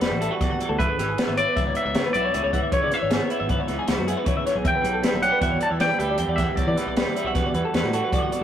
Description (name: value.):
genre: math rock and midwest emo.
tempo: 156 BPM.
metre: 5/4.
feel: straight.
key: unclear.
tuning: A4 = 441 Hz.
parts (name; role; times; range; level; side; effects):
twangy electric guitar; melody; 0.0-7.0 s; B4 to A5; -25 LUFS; equal; spring reverb.
electric guitar through a small old amp; accompaniment; 0.0-8.4 s; E2 to G4; -27 LUFS; right 2 dB; harmonic tremolo.
twelve-string electric guitar; arpeggios; 0.0-8.4 s; F#4 to G5; -27 LUFS; left 3 dB; spring reverb, slapback echo.
growling fingered electric bass; bass; 0.0-8.4 s; E1 to E3; -29 LUFS; equal; overdrive.
compact cocktail drum kit; drums; 0.0-8.4 s; hi-hat, kick drum, snare drum; -26 LUFS; equal; none.
room: light reverb.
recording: rough rehearsal-room recording.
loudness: -20 LUFS.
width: side -10 dB against mid.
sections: 0.0-8.4 A section.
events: none.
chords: 0.0 Em9; 0.8 C#m7; 4.7 Em9.